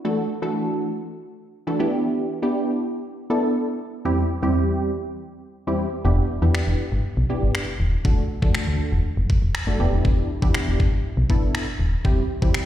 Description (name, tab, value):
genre	dance-pop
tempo	120 BPM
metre	4/4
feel	straight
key	E minor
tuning	A4 = 440 Hz
part	funky polysynth comp	accompaniment	0.0-12.7 s	E2 to A4	-24 LUFS	equal	chorus, sidechain pumping, slapback echo
part	solid FM bass	bass	6.0-12.5 s	D#1 to E2	-21 LUFS	equal	sidechain pumping
part	pop drum kit	drums	6.5-12.7 s	finger snaps, kick drum	-22 LUFS	equal	none
room	light reverb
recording	live gig heard through the venue's PA, recital hall reverb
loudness	-20 LUFS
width	side -12 dB against mid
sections	0.0-12.7 A section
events	none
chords	0.0 D/E; 1.8 Em7; 4.0 C/E; 6.0 Em7; 8.0 D/E; 9.8 Em7; 12.0 C/E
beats	| 0.05 0.55 1.05 1.55 | 2.05 2.55 3.05 3.55 | 4.05 4.55 5.05 5.55 | 6.05 6.55 7.05 7.55 | 8.05 8.55 9.05 9.55 | 10.05 10.55 11.05 11.55 | 12.05 12.55